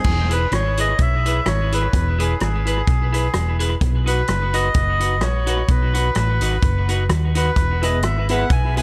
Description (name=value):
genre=ska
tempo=128 BPM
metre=4/4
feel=swing 55% on 8ths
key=E major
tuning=A4 = 440 Hz
part: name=melodica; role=melody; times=0.0-8.8 s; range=G#4 to G#5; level=-26 LUFS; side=equal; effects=tape echo
part: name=hollow-body short-scale fingered electric bass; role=bass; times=0.0-8.8 s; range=E1 to D#2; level=-22 LUFS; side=equal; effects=none
part: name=vintage drum kit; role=drums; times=0.0-8.8 s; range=crash cymbal, hi-hat, kick drum, rim click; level=-25 LUFS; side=equal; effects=tape echo
part: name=clean electric guitar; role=accompaniment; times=0.3-8.8 s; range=D#4 to B4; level=-28 LUFS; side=equal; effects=analog chorus, tape echo
part: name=warm upright piano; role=stabs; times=7.8-8.8 s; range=B3 to B4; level=-31 LUFS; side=equal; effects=tape echo, plate reverb
room=light reverb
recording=none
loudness=-19 LUFS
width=mono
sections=0.1-8.8 A section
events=none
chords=0.1 E; 3.8 B; 7.6 E